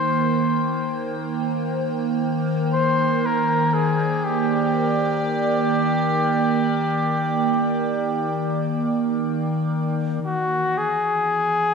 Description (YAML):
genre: ambient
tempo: free time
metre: none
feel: none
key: unclear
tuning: A4 = 444 Hz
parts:
  - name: clear flugelhorn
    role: melody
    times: 0.0-11.7 s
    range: Gb4 to C5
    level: -23 LUFS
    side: left 2 dB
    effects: shimmer reverb
  - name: evolving wavetable pad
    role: sustained chords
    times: 0.0-11.7 s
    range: Eb3 to G5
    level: -22 LUFS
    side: right 2 dB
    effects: chorus, built-in reverb, phaser
room: wet concert hall reverb, RT60 2.3 s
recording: dark, warm production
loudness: -19 LUFS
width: side -5 dB against mid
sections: 0.0-10.2 A section; 10.2-11.7 B section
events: none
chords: 0.0 Cm7; 2.2 Ebmaj7; 10.2 Dbm7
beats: free time